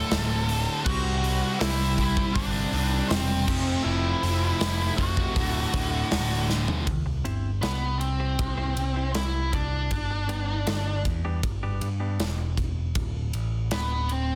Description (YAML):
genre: quiet-loud alternative rock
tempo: 79 BPM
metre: 4/4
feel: straight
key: unclear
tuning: A4 = 443 Hz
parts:
  - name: octave-fuzz lead guitar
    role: melody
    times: 0.0-14.4 s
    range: B3 to A5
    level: -32 LUFS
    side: equal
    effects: distortion, slapback echo
  - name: thick fuzz guitar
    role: riff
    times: 0.0-6.9 s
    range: D2 to C5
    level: -33 LUFS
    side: equal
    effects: distortion
  - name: tight distorted guitar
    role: riff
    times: 0.0-6.8 s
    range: D2 to C4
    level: -34 LUFS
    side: equal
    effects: distortion
  - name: overdriven picked electric bass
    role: bass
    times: 0.1-14.4 s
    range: D1 to G2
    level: -30 LUFS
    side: equal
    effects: none
  - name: big rock drum kit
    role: drums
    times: 0.1-14.3 s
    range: crash cymbal, hi-hat, kick drum, ride cymbal, snare drum, toms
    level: -32 LUFS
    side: equal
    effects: none
  - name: semi-hollow electric guitar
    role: arpeggios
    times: 7.1-12.4 s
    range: G3 to C5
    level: -39 LUFS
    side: equal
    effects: slapback echo
room: studio reverb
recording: dense, heavily limited modern master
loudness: -26 LUFS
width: mono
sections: 0.0-6.9 A section; 6.9-14.4 B section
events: drum fill 6.5-6.9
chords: 0.0 D; 0.9 C; 3.5 F; 5.4 Dadd9; 6.9 C; 9.9 G; 13.0 D5